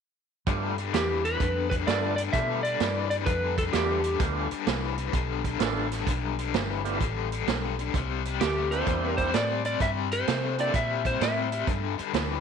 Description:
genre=electric blues shuffle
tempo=129 BPM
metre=4/4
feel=swing 67% on 8ths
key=G mixolydian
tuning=A4 = 440 Hz
part: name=overdriven tonewheel organ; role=accompaniment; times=0.5-10.7 s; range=A3 to A4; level=-34 LUFS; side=right 12 dB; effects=slow rotary speaker
part: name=raw garage guitar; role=riff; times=0.5-12.4 s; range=G2 to A3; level=-31 LUFS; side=left 14 dB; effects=overdrive, tremolo
part: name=vintage muted fingered electric bass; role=bass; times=0.5-12.4 s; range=G1 to C3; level=-32 LUFS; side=equal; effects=none
part: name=vintage drum kit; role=drums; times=0.5-12.3 s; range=hi-hat, kick drum, snare drum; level=-30 LUFS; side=right 5 dB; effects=none
part: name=electric slide guitar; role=melody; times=0.9-4.2, 8.4-11.6 s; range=G4 to E5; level=-28 LUFS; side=left 1 dB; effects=none
room=light reverb, studio reverb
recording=1960s-style stereo with parts hard left and right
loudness=-25 LUFS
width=side -6 dB against mid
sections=0.5-12.4 A section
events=none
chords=0.5 G7; 7.9 C7; 11.7 G5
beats=| 0.47 0.94 1.41 1.87 | 2.34 2.81 3.27 3.74 | 4.21 4.67 5.14 5.61 | 6.07 6.54 7.00 7.47 | 7.94 8.40 8.87 9.34 | 9.80 10.27 10.74 11.20 | 11.67 12.14

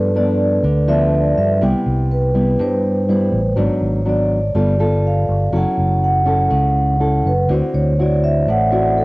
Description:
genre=bossa nova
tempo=122 BPM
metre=4/4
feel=straight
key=unclear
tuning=A4 = 440 Hz
part: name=nylon-string guitar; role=accompaniment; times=0.0-9.0 s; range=G2 to A4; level=-20 LUFS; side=left 1 dB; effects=cassette tape
part: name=vibraphone with soft mallets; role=accompaniment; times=0.0-9.0 s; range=A4 to G5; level=-19 LUFS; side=right 1 dB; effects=cassette tape
part: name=fingered electric bass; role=bass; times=0.0-9.0 s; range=F#1 to G2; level=-17 LUFS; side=equal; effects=none
room=light reverb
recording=home recording on cassette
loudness=-14 LUFS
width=side -23 dB against mid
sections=0.0-9.0 A section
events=vibraphone solo 0.0-9.0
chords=0.0 G7; 1.6 Cmaj7; 3.6 G#m7b5; 4.5 G9; 5.5 F#m7; 7.5 D9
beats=0.14 0.63 1.12 | 1.61 2.10 2.59 3.08 | 3.57 4.06 4.55 5.04 | 5.53 6.02 6.51 7.00 | 7.49 7.98 8.47 8.96

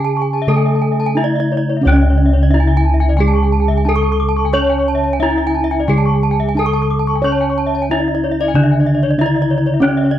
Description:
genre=gamelan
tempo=89 BPM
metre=4/4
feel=straight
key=C# pelog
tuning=A4 = 441 Hz
part: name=gamelan-type bronze metallophone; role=melody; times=0.0-10.2 s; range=C#4 to C#5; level=-18 LUFS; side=equal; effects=none
part: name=gamelan-type bronze metallophone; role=accompaniment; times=0.0-10.2 s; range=C#3 to C#4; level=-22 LUFS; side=right 2 dB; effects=none
part: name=gamelan-type bronze metallophone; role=arpeggios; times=0.0-10.1 s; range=C#5 to D6+20c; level=-23 LUFS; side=left 7 dB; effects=none
part: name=gamelan-type bronze metallophone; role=arpeggios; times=0.0-10.2 s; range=D5+20c to C#6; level=-23 LUFS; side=right 9 dB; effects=none
part: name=gamelan-type bossed gongs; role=bass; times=0.0-10.2 s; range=C#2 to C#5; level=-16 LUFS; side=equal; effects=none
room=little or no reverb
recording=dry, close 1970s-style studio recording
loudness=-12 LUFS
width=side -11 dB against mid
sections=0.0-10.2 A section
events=none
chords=none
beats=0.48 1.16 | 1.83 2.51 3.18 3.85 | 4.53 5.20 5.88 6.55 | 7.23 7.89 8.54 9.18 | 9.81

